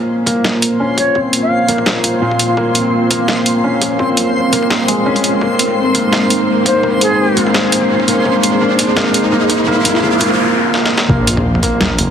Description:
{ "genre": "half-time drum and bass", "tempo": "169 BPM", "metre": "4/4", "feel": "swing 55% on 16ths, half-time", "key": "unclear", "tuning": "A4 = 440 Hz", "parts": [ { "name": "dark analog pad", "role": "sustained chords", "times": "0.0-10.4 s", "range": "Ab3 to F5", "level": "-18 LUFS", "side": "equal", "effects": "chorus, sidechain pumping" }, { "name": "riser, noise sweep and sub drop", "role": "sound effects", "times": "1.4-12.1 s", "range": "none", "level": "-20 LUFS", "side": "equal", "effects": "none" }, { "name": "backwards swelling texture", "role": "texture", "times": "0.8-10.4 s", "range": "C4 to C6", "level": "-20 LUFS", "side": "equal", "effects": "built-in reverb" }, { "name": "felt-muted upright piano", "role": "arpeggios", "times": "0.3-12.1 s", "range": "Bb2 to Db4", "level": "-16 LUFS", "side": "equal", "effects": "low-pass filter, tape echo" }, { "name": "boom bap sampler-style drum kit", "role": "drums", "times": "0.3-12.1 s", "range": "hi-hat, snare drum, toms", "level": "-17 LUFS", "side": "equal", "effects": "high-pass filter on hats, high-pass filter on snare, high-pass filter on toms" }, { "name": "electronic kick drum", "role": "drums", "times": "0.3-11.7 s", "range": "none", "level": "-22 LUFS", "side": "equal", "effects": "high-pass filter on kick" }, { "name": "mellow silver concert flute", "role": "melody", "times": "1.0-1.8, 6.7-7.5 s", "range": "Ab4 to F5", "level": "-20 LUFS", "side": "left 1 dB", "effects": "low-pass filter, ping-pong delay" }, { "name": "dark detuned saw bass", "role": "bass", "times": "11.1-12.1 s", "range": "F1 to Bb1", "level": "-17 LUFS", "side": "equal", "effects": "none" } ], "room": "moderate huge ambient reverb, RT60 9.5 s", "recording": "heavily compressed radio sound, multiband compression", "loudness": "-11 LUFS", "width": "side -8 dB against mid", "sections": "0.0-11.1 A section; 11.1-12.1 B section", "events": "build-up 0.0-11.1; riser 1.4-10.4; noise sweep 9.7-11.1; drum fill 10.7-11.1; drop 11.1-12.1; impact 11.1-12.1", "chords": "0.0 Bbm; 5.4 Ab; 11.1 N.C." }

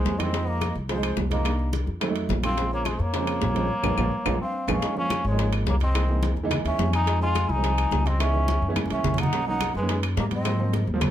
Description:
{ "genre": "Afro-Cuban jazz", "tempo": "213 BPM", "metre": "4/4", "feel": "straight", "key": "Bb minor", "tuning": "A4 = 441 Hz", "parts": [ { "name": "trombone with metal mute", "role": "melody", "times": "0.0-10.8 s", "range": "Ab3 to F4", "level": "-29 LUFS", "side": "equal", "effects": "plate reverb" }, { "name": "breathy mellow jazz flute", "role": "second line", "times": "0.0-10.9 s", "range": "B4 to Ab5", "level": "-33 LUFS", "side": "left 1 dB", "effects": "none" }, { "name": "dark baby grand piano", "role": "accompaniment", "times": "0.0-11.1 s", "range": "Db3 to F4", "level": "-30 LUFS", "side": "right 3 dB", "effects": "none" }, { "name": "upright bass", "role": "bass", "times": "0.0-11.1 s", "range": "Ab1 to Ab2", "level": "-26 LUFS", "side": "equal", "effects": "none" }, { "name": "bongos", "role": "percussion", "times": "0.1-11.1 s", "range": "none", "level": "-35 LUFS", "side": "left 9 dB", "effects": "none" }, { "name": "congas", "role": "percussion", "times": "0.1-11.1 s", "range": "none", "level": "-32 LUFS", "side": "left 1 dB", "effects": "none" }, { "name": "timbales", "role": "percussion", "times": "0.1-11.1 s", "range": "none", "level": "-34 LUFS", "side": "right 8 dB", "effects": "none" }, { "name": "claves", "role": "percussion", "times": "0.2-11.1 s", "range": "none", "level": "-34 LUFS", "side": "left 9 dB", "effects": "none" } ], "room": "light reverb", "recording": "none", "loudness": "-22 LUFS", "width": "side -11 dB against mid", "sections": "0.0-4.8 A section; 4.8-11.1 B section", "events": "drum fill 3.7-4.8, 8.8-9.3; band accent 3.7-4.8", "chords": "0.3 Fm7; 1.5 Cm7; 2.0 F7b9; 2.6 Bbm9; 4.8 Db6; 6.0 C7alt; 7.1 Fm7; 8.2 Dbm7; 8.8 Gb9; 9.3 Bmaj7; 10.5 Ab13" }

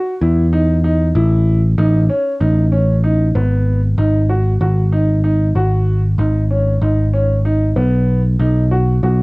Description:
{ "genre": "progressive instrumental, band music in an uneven meter", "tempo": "191 BPM (eighths)", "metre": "7/8", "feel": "straight", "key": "G# phrygian", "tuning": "A4 = 440 Hz", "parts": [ { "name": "warm concert grand piano", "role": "arpeggios", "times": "0.0-9.2 s", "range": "B3 to F#4", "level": "-18 LUFS", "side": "equal", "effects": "cassette tape" }, { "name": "picked electric bass", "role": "bass", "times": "0.2-9.2 s", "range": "G#1 to E2", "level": "-13 LUFS", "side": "equal", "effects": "none" } ], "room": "little or no reverb", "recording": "home recording on cassette", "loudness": "-12 LUFS", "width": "side -26 dB against mid", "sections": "0.0-3.4 A section; 3.4-9.2 B section", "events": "none", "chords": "0.0 E5; 1.2 A; 3.4 G#7(no3); 7.8 B" }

